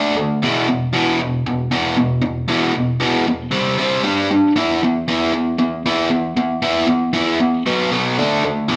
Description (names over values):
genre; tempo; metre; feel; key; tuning
rock; 116 BPM; 4/4; straight; E minor; A4 = 440 Hz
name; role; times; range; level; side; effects
biting overdriven guitar; solo; 0.0-8.8 s; E2 to G4; -18 LUFS; equal; none
room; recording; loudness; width
moderate large studio reverb, RT60 0.9 s; band playing live in one room; -18 LUFS; mono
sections
0.0-8.8 A section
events
none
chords
0.4 E5; 3.5 C5; 4.0 G5; 4.6 E5; 7.7 B5; 8.2 D5